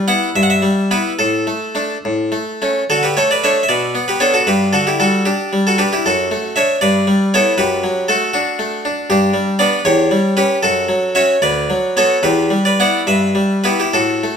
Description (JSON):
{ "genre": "classical, baroque-style suite movement for harpsichord", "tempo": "66-80 BPM (dotted quarters)", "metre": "6/8", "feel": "rubato", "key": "D major", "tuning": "A4 = 439 Hz", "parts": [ { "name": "harpsichord", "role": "solo", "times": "0.0-14.4 s", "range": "D2 to F#5", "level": "-13 LUFS", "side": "equal", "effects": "none" } ], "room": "wet stone room reverb, RT60 1.2 s", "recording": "none", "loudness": "-13 LUFS", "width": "side -7 dB against mid", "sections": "0.0-2.9 A section; 2.9-14.4 A section", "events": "none", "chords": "0.4 Em/G; 1.2 D5/A; 2.0 A; 2.9 D; 3.7 G/B; 4.5 G5; 6.1 D/F#; 6.8 Em/G; 7.6 D/F#; 9.1 G; 9.9 C#dim/E; 10.6 F#m; 11.4 Bm/D; 12.2 Em; 13.1 Em/G" }